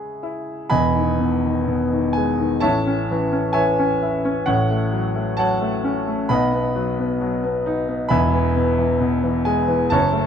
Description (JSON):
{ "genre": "classical, lyrical solo piano", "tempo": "65 BPM", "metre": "4/4", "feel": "rubato", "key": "E major", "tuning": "A4 = 441 Hz", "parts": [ { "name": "clear concert grand piano", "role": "solo", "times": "0.0-10.3 s", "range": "E1 to B5", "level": "-18 LUFS", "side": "equal", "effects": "none" } ], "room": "light reverb", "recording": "minimal, uncompressed stereo recording", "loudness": "-18 LUFS", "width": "side -8 dB against mid", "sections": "0.7-10.3 A section", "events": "none", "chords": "0.0 C#m7; 0.7 Emaj7; 2.6 Amaj7; 4.5 F#m/A; 6.3 B; 8.1 E", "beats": "| 0.70 1.66 2.62 3.55 | 4.47 5.39 6.30 7.21 | 8.12 9.02 9.92" }